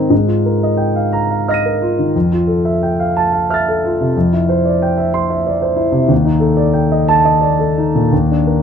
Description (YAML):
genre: classical, impressionist solo piano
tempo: 60 BPM (dotted quarters)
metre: 6/8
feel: rubato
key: unclear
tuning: A4 = 440 Hz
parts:
  - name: warm concert grand piano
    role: solo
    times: 0.0-8.6 s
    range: Eb2 to Eb7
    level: -12 LUFS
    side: equal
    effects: none
room: moderate studio reverb, RT60 0.8 s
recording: dark, warm production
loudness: -12 LUFS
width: side -7 dB against mid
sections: 0.0-8.6 A section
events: none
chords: 0.1 Fm11/Ab; 2.1 Fmaj9; 4.2 Dm11/F; 6.1 Ebmaj7#11; 8.1 Bb/Eb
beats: | 0.11 1.15 | 2.15 3.15 | 4.15 5.13 | 6.11 7.10 | 8.12